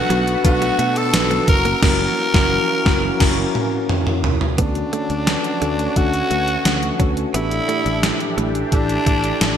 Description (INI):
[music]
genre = 1980s-style pop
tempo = 87 BPM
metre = 4/4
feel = straight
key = unclear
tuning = A4 = 440 Hz
[part]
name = growling tenor saxophone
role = melody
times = 0.0-9.6 s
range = D4 to A#4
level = -22 LUFS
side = equal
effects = digital delay
[part]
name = clear studio violin section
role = second line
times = 0.0-1.8 s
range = F#5 to A#5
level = -29 LUFS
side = left 1 dB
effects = digital delay
[part]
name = mellow tine electric piano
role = accompaniment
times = 0.0-9.6 s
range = A2 to B4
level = -22 LUFS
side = left 1 dB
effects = medium stereo tremolo
[part]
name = sweeping resonant pad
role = sustained chords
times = 0.0-9.6 s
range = B2 to C#5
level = -29 LUFS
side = equal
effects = chorus
[part]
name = direct-recorded clean electric guitar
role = riff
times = 0.1-9.2 s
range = F#3 to C#4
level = -29 LUFS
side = right 5 dB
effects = analog chorus
[part]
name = fretless electric bass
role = bass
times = 0.1-9.6 s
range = F#1 to B2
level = -24 LUFS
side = equal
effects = none
[part]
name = gated 80s digital drum machine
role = drums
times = 0.1-9.6 s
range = crash cymbal, hi-hat, kick drum, snare drum, tambourine, toms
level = -19 LUFS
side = equal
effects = gated reverb, gated reverb snare, overdrive
[sound]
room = moderate lush hall reverb, RT60 1.8 s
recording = bright 1980s-style digital production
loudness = -16 LUFS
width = side -9 dB against mid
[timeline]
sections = 0.0-4.6 A section; 4.6-9.6 B section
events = band accent 1.8-4.6; drum fill 3.2-4.6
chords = 0.0 Bm7; 1.5 F#7; 4.6 Dmaj7; 7.3 A7sus4